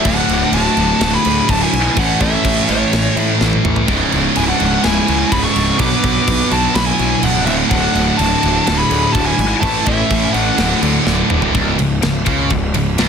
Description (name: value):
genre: heavy metal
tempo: 125 BPM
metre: 4/4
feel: straight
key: C# phrygian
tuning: A4 = 440 Hz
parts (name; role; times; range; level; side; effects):
- nasal lead guitar with a parked wah; melody; 0.0-10.8 s; C#5 to D6; -20 LUFS; left 1 dB; overdrive, ping-pong delay
- high-gain lead guitar; second line; 0.0-10.8 s; A3 to B4; -24 LUFS; right 2 dB; distortion
- high-gain distorted guitar; riff; 0.0-13.1 s; C#2 to B3; -19 LUFS; right 12 dB; distortion
- scooped high-gain guitar; riff; 0.0-13.1 s; C#2 to B3; -20 LUFS; left 11 dB; distortion
- thick fuzz guitar; riff; 0.0-11.5 s; C#2 to B4; -22 LUFS; left 1 dB; distortion
- fuzz picked electric bass; bass; 0.1-13.1 s; C#1 to A2; -20 LUFS; left 1 dB; overdrive
- tight metal drum kit; drums; 0.1-13.1 s; crash cymbal, kick drum, ride cymbal, snare drum, toms; -20 LUFS; right 1 dB; none
room: little or no reverb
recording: dense, heavily limited modern master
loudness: -12 LUFS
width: side -7 dB against mid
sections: 0.0-11.5 A section; 11.5-13.1 B section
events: half time 0.0-11.5; drum fill 3.4-3.9, 11.1-11.5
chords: 0.0 D; 2.0 A; 3.9 C#m; 5.8 Bm; 7.5 D; 9.6 A; 10.6 D; 11.5 C#5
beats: | 0.05 0.53 1.01 1.49 | 1.97 2.45 2.92 3.40 | 3.88 4.36 4.84 5.32 | 5.80 6.28 6.75 7.23 | 7.71 8.19 8.67 9.15 | 9.63 10.11 10.59 11.07 | 11.55 12.03 12.51 12.99